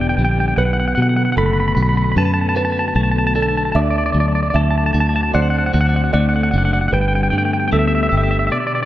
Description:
post-rock; 76 BPM; 4/4; straight; A4 = 441 Hz
twangy electric guitar; melody; 0.0-8.9 s; D5 to B5; -20 LUFS; equal; spring reverb, tape echo
glassy FM pad; sustained chords; 0.0-8.9 s; D3 to A4; -26 LUFS; left 2 dB; ensemble chorus, built-in reverb
clean electric guitar; arpeggios; 0.0-8.9 s; B2 to C5; -24 LUFS; left 4 dB; tremolo, tape echo
felt-muted upright piano; arpeggios; 0.0-8.5 s; A4 to E5; -26 LUFS; right 4 dB; tape echo
fingered electric bass; bass; 0.0-8.5 s; E1 to B2; -17 LUFS; equal
light reverb, digital ambience; dark, warm production; -14 LUFS; side -14 dB against mid
0.0-8.9 A section
break 8.5-8.9
0.0 Em7; 0.6 Bm7; 3.8 D7; 6.9 Gadd9

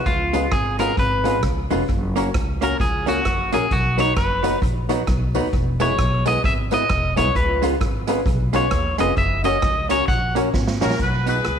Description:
ska; 132 BPM; 4/4; swing 60% on 8ths; B major; A4 = 440 Hz
electric guitar at the edge of break-up; melody; 0.0-10.3 s; E#4 to F#5; -22 LUFS; equal
upright bass; bass; 0.0-11.6 s; E1 to D#2; -24 LUFS; equal
street-band drum kit; drums; 0.1-11.6 s; hi-hat, kick drum, rim click, snare drum; -24 LUFS; right 1 dB
archtop guitar, miked and amplified; accompaniment; 0.3-11.4 s; F#3 to F#4; -26 LUFS; right 10 dB
warm upright piano; stabs; 0.3-10.9 s; A#3 to C#5; -26 LUFS; left 9 dB
tambourine; percussion; 0.3-11.4 s; -43 LUFS; right 12 dB
clear horn section; melody; 10.8-11.6 s; F#4 to B4; -23 LUFS; left 2 dB
moderate echo chamber reverb, RT60 1.7 s, studio reverb; 1960s-style stereo with parts hard left and right; -18 LUFS; side -8 dB against mid
0.0-11.0 A section
clean electric guitar solo 0.0-11.0; drum fill 10.5-11.0
0.1 C#7; 1.9 F#; 3.7 B; 5.5 E; 7.4 C#7; 9.2 F#; 11.0 B

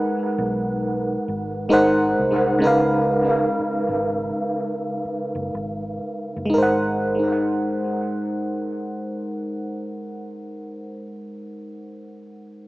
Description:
R&B, neo-soul; 58-68 BPM; 4/4; swing 62% on 16ths; G# dorian; A4 = 440 Hz
FM electric piano; accompaniment; 0.0-12.7 s; C#3 to F#5; -21 LUFS; equal; chorus, analog delay
vintage muted fingered electric bass; bass; 0.4-11.5 s; F#1 to C#2; -32 LUFS; equal
moderate plate reverb, RT60 2.7 s; echo-heavy mix, small speaker sound; -20 LUFS; side -18 dB against mid
0.0-6.5 A section; 6.5-10.7 B section
slowing down 0.0-6.5
0.0 G#m9; 1.7 G#9; 2.6 C#13; 6.5 G#9

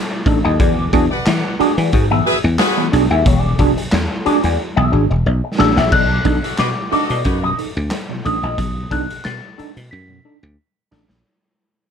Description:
funk; 90 BPM; 4/4; straight; A4 = 440 Hz
electric guitar with an envelope filter; accompaniment; 0.1-8.6 s; D#4 to E5; -22 LUFS; left 4 dB; wah
tine electric piano; stabs; 0.3-11.0 s; B2 to A4; -20 LUFS; right 3 dB; medium stereo tremolo
dry thumbed slap bass; bass; 0.3-11.2 s; E1 to E3; -18 LUFS; equal
raw garage drum kit; drums; 0.3-11.2 s; crash cymbal, handclaps, hi-hat, kick drum, snare drum; -20 LUFS; equal
warm horn section; second line; 1.1-7.5 s; D#4 to F#5; -21 LUFS; left 1 dB
small celesta; melody; 5.6-10.9 s; D6 to B6; -22 LUFS; left 5 dB; plate reverb
moderate small room ambience, RT60 0.5 s; -14 LUFS; side -7 dB against mid
0.0-5.9 A section; 5.9-11.2 B section
drum fill 4.6-5.9, 9.9-11.2; fade-out 5.9-11.2; break 8.6-11.2
0.0 B7#9 (rootless); 0.6 E9; 5.9 B7#9

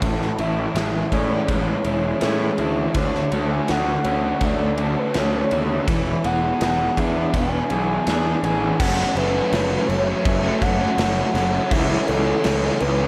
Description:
rock, shoegaze and dream pop; 82 BPM; 4/4; straight; A4 = 441 Hz
direct-recorded clean electric guitar; arpeggios; 0.0-13.1 s; E3 to G#4; -35 LUFS; equal
crunchy overdriven guitar; riff; 0.0-13.1 s; F#2 to G#4; -28 LUFS; equal; reverse reverb
overdriven semi-hollow guitar; riff; 0.0-13.1 s; F#2 to D4; -29 LUFS; equal; subtle chorus
fuzz picked electric bass; bass; 0.0-13.0 s; E1 to A2; -27 LUFS; equal; overdrive
gated 80s drum kit; drums; 0.0-13.0 s; crash cymbal, kick drum, ride cymbal, snare drum; -29 LUFS; equal
pure breathy sine lead; melody; 0.4-13.1 s; G#4 to G#5; -28 LUFS; equal; chorus, tape echo
deep dark ambient pad; sustained chords; 10.2-13.1 s; C#3 to G#5; -34 LUFS; equal
wet huge ambient reverb, RT60 6.2 s; dreamy mix soaked in reverb; -21 LUFS; mono
0.0-8.8 A section; 8.8-13.1 B section
0.0 Amaj7; 3.0 Dmaj7; 5.9 E7; 8.8 F#m; 11.7 C#m7

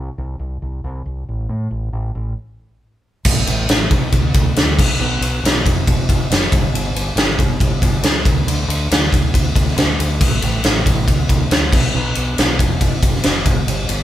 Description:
quiet-loud alternative rock; 138 BPM; 4/4; straight; A4 = 440 Hz
growling fingered electric bass; bass; 0.0-14.0 s; F1 to A2; -20 LUFS; equal; overdrive
huge arena drum kit; drums; 3.2-14.0 s; crash cymbal, kick drum, ride cymbal, snare drum; -15 LUFS; equal
light reverb; band playing live in one room; -14 LUFS; side -12 dB against mid
0.0-3.3 A section; 3.3-14.0 B section
stop 2.4-3.3

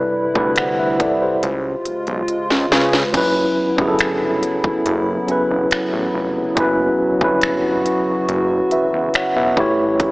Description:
contemporary R&B; 70 BPM; 4/4; straight; A4 = 440 Hz
mellow tine electric piano; accompaniment; 0.0-10.1 s; C3 to F#5; -18 LUFS; equal; medium stereo tremolo
hollow soft pad; sustained chords; 0.1-10.1 s; C3 to F#4; -24 LUFS; equal; chorus
fat analog bass; bass; 0.0-10.1 s; E1 to C#3; -23 LUFS; equal
trap drum kit; drums; 0.4-10.1 s; crash cymbal, finger snaps, hi-hat, kick drum, snare drum; -21 LUFS; equal
light reverb; AM radio sound; -15 LUFS; side -23 dB against mid
0.0-3.1 A section; 3.1-10.1 B section
drum fill 2.3-3.1
0.0 Cmaj7; 1.4 C#7; 3.1 F#7sus4; 9.6 A7

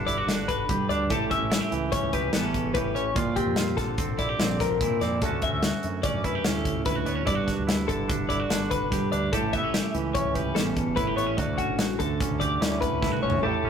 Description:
math rock and midwest emo; 146 BPM; 5/4; straight; D major; A4 = 440 Hz
twangy electric guitar; accompaniment; 0.0-13.7 s; D2 to G4; -28 LUFS; right 5 dB
twelve-string electric guitar; arpeggios; 0.0-13.7 s; F#4 to E5; -28 LUFS; left 5 dB
growling fingered electric bass; bass; 0.0-13.7 s; G1 to F#2; -34 LUFS; equal; overdrive
modern studio drum kit; drums; 0.1-13.4 s; hi-hat, kick drum, snare drum, toms; -28 LUFS; left 1 dB
moderate stone room reverb, RT60 1.2 s; rough rehearsal-room recording, tube saturation; -23 LUFS; side -7 dB against mid
0.0-13.4 A section
drum fill 13.0-13.4
0.0 Gmaj7; 1.1 A7; 3.2 Bbmaj9; 5.2 Dmaj7; 7.3 Gmaj7; 9.3 A7; 11.4 Dmaj7

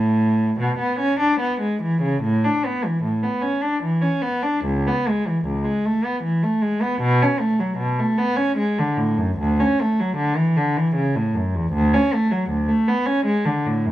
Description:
classical, baroque-style suite movement for unaccompanied cello; 76 BPM; 3/4; rubato; A major; A4 = 440 Hz
warm cello; solo; 0.0-13.9 s; C#2 to D4; -18 LUFS; equal
light reverb; close, detailed microphones, faint mains hum; -18 LUFS; side -14 dB against mid
0.0-2.2 A section; 2.2-13.9 A section

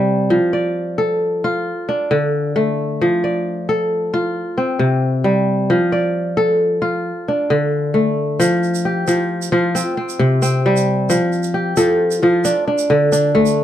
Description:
west african traditional, West African string and xylophone music; 89 BPM (dotted quarters); 12/8; straight; F major; A4 = 440 Hz
kora; arpeggios; 0.0-13.6 s; C3 to D5; -15 LUFS; equal
egg shaker; percussion; 8.4-13.6 s; -27 LUFS; right 10 dB
light reverb; dark, warm production; -15 LUFS; side -11 dB against mid
0.0-8.4 A section; 8.4-13.6 B section
0.3 F; 1.7 D5; 3.0 F; 4.4 C5; 5.7 F; 7.1 D5; 8.4 Fsus2; 9.7 C5; 11.1 F; 12.4 Dm

